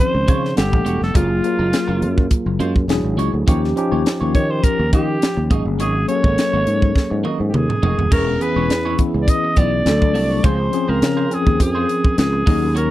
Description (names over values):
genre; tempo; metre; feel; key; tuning
polished 1980s jazz-funk pop; 103 BPM; 4/4; swing 54% on 16ths; Db major; A4 = 440 Hz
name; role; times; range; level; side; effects
growling alto saxophone; melody; 0.0-12.9 s; F4 to Eb5; -22 LUFS; right 1 dB; slapback echo
tine electric piano; accompaniment; 0.0-12.9 s; Eb3 to F#5; -21 LUFS; left 3 dB; medium stereo tremolo, wide subtle chorus
clean electric guitar; riff; 0.1-12.9 s; Ab3 to Eb5; -28 LUFS; right 4 dB; analog chorus
sustaining fretless electric bass; bass; 0.1-12.9 s; Eb1 to Eb3; -20 LUFS; equal; none
crisp fusion drum kit; drums; 0.3-12.9 s; crash cymbal, hi-hat, kick drum, snare drum, toms; -18 LUFS; equal; none
room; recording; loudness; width
little or no reverb; dry, close 1970s-style studio recording; -15 LUFS; side -15 dB against mid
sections
0.0-8.1 A section; 8.1-12.9 B section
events
drum fill 7.0-8.1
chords
0.0 Dbmaj7; 0.6 Gmaj9; 1.2 Gbmaj9; 2.9 E9; 3.5 Eb9; 5.5 Ab9sus4; 8.1 E6; 9.9 Dmaj7; 10.4 Dbmaj7